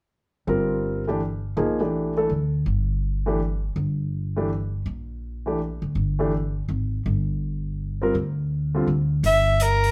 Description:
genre	modal jazz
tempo	164 BPM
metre	3/4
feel	swing 65% on 8ths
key	G dorian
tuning	A4 = 440 Hz
part	warm concert grand piano	accompaniment	0.5-8.9 s	D3 to Bb4	-26 LUFS	equal	none
part	upright bass	bass	0.5-9.9 s	G1 to D2	-27 LUFS	equal	none
part	hi-hat	drums	9.2-9.9 s	none	-36 LUFS	equal	none
part	breathy soprano saxophone	melody	9.3-9.9 s	Bb4 to E5	-21 LUFS	equal	none
room	moderate studio reverb, RT60 0.8 s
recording	band playing live in one room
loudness	-25 LUFS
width	mono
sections	0.5-9.2 A section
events	none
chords	0.5 Gmadd9; 9.2 Gm6

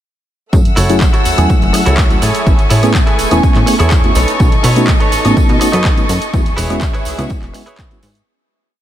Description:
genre	filtered disco house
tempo	124 BPM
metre	4/4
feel	straight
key	F# dorian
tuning	A4 = 440 Hz
part	mellow tine electric piano	accompaniment	0.5-8.0 s	F#3 to G#5	-17 LUFS	equal	phaser, sidechain pumping
part	warm chamber violin section	sustained chords	0.5-8.3 s	A3 to E6	-19 LUFS	equal	sidechain pumping
part	plucky analog bass	bass	0.5-8.2 s	E1 to B2	-16 LUFS	equal	sidechain pumping
part	electronic kick drum	drums	0.5-7.9 s	none	-13 LUFS	equal	none
part	punchy analog drum machine	drums	0.5-8.2 s	handclaps, hi-hat, shaker, woodblock	-21 LUFS	equal	sidechain pumping on perc, sidechain pumping on hats
part	tambourine	percussion	0.5-8.2 s	none	-30 LUFS	right 3 dB	sidechain pumping on perc
part	direct-recorded clean electric guitar	riff	0.8-8.1 s	D#4 to D#5	-21 LUFS	right 2 dB	sidechain pumping
room	light reverb, digital ambience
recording	none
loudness	-10 LUFS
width	side -12 dB against mid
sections	0.5-8.3 drop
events	drop 0.5-8.3; fade-out 5.7-8.3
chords	0.5 F#m7; 2.2 Amaj7; 4.2 B9; 6.3 E6

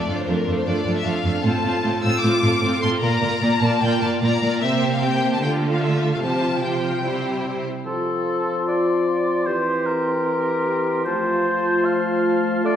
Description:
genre	classical, dramatic, fast romantic movement for symphony orchestra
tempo	151 BPM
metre	4/4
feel	straight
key	F major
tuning	A4 = 440 Hz
part	warm symphonic violin section	melody	0.0-7.5 s	Bb4 to E6	-25 LUFS	left 3 dB	none
part	warm symphonic violin section	second line	0.0-7.6 s	F4 to D5	-27 LUFS	left 2 dB	none
part	warm symphonic viola section	accompaniment	0.0-7.7 s	F3 to F4	-24 LUFS	right 2 dB	none
part	rich symphonic cello section	bass	0.1-7.6 s	F2 to D3	-23 LUFS	right 2 dB	none
part	clear clarinet	second line	7.9-12.8 s	F4 to G4	-27 LUFS	right 1 dB	none
part	mellow hollow silver concert flute	second line	7.9-12.8 s	A5 to C6	-30 LUFS	right 1 dB	none
part	mellow oboe	second line	7.9-12.8 s	A4 to F5	-24 LUFS	equal	none
part	dark bassoon	accompaniment	7.9-12.8 s	E3 to A3	-23 LUFS	left 1 dB	none
part	mellow French horn section	sustained chords	7.9-12.8 s	A3 to G4	-26 LUFS	left 2 dB	none
room	wet scoring stage reverb, RT60 1.9 s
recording	heard from further back in the room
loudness	-18 LUFS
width	side -9 dB against mid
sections	0.0-7.9 A section; 7.9-12.8 B section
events	none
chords	0.0 Dm/F; 1.4 F/A; 3.0 Bb; 4.6 C5; 5.4 Dm; 6.2 Csus4; 7.0 C; 7.9 F; 9.5 C7/E; 11.1 F

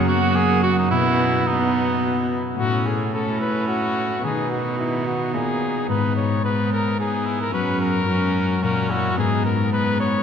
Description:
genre	classical, renaissance-style consort dance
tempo	109 BPM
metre	3/4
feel	straight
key	B major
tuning	A4 = 440 Hz
part	warm cornet	melody	0.0-10.2 s	E4 to F#5	-26 LUFS	left 3 dB	none
part	warm cor anglais	second line	0.0-10.2 s	D#4 to G#4	-26 LUFS	right 5 dB	none
part	concert harp	accompaniment	0.0-10.2 s	F#2 to B4	-25 LUFS	left 6 dB	none
part	warm viola	accompaniment	0.0-10.2 s	A#3 to C#4	-27 LUFS	right 1 dB	none
part	warm cello	bass	0.0-10.2 s	F#2 to B2	-24 LUFS	right 2 dB	none
room	wet cathedral reverb, RT60 6.1 s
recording	none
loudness	-19 LUFS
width	side -7 dB against mid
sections	0.0-2.6 A section; 2.6-10.2 B section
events	none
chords	0.0 F#; 0.9 B; 2.6 A; 4.2 B; 5.9 G#m; 7.5 F#sus4; 8.1 F#; 9.2 G#m

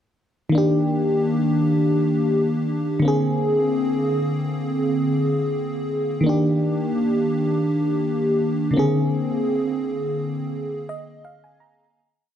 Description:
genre	R&B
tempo	84 BPM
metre	4/4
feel	swing 54% on 16ths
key	Eb major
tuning	A4 = 443 Hz
part	FM electric piano with soft pad layer	solo	0.5-12.0 s	Db3 to Bb5	-19 LUFS	equal	chorus
room	light reverb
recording	dark, warm production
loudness	-19 LUFS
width	side -9 dB against mid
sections	0.5-12.0 verse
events	fade-out 9.1-12.0; FM electric piano fill 10.5-12.0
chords	0.5 Ebmaj7; 3.0 Bb7/D; 6.2 Ebmaj7; 8.7 Bb7/D

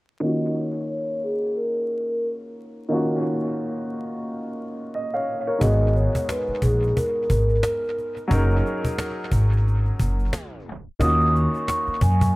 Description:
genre	hip hop, boom-bap hip-hop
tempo	89 BPM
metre	4/4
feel	swing 57% on 16ths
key	Eb minor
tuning	A4 = 440 Hz
part	vibraphone with soft mallets	melody	0.2-12.3 s	Ab4 to Eb6	-25 LUFS	equal	high-pass filter, low-pass filter, dub echo
part	warm baby grand piano	accompaniment	0.2-12.4 s	Ab2 to F5	-26 LUFS	equal	high-pass filter, low-pass filter, dub echo
part	upright bass	bass	5.6-12.3 s	Gb1 to Gb2	-20 LUFS	equal	none
part	cajon	drums	5.6-12.3 s	none	-27 LUFS	equal	dub echo
room	light reverb, studio reverb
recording	echo-heavy mix, vinyl crackle, tape stop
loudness	-21 LUFS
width	side -21 dB against mid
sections	0.2-11.0 A section; 11.0-12.4 B section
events	filter sweep 0.2-11.0; tape stop 10.3-11.0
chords	0.2 Ebm9; 5.6 Abm7; 8.3 Gb6; 11.0 Ebm9

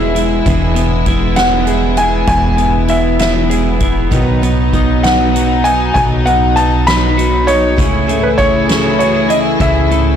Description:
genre	six-eight pop ballad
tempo	66 BPM (dotted quarters)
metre	6/8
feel	straight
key	E major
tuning	A4 = 440 Hz
part	warm concert grand piano	melody	0.0-10.2 s	B4 to B5	-15 LUFS	equal	none
part	twelve-string electric guitar	accompaniment	0.0-10.2 s	B2 to G#4	-17 LUFS	left 2 dB	none
part	warm studio string section	sustained chords	0.0-10.2 s	C#3 to G#4	-19 LUFS	equal	none
part	picked steel-string acoustic guitar	arpeggios	0.0-10.2 s	B2 to B4	-23 LUFS	right 6 dB	none
part	upright bass	bass	0.0-10.2 s	E1 to C#2	-17 LUFS	equal	none
part	soft-mallet drum kit	drums	0.2-10.1 s	hi-hat, kick drum, snare drum	-19 LUFS	right 1 dB	none
room	light reverb, studio reverb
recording	blown-out, overdriven recording, overdrive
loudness	-10 LUFS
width	side -8 dB against mid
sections	0.0-10.2 A section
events	none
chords	0.0 E; 4.1 B; 7.8 Amaj7/C#

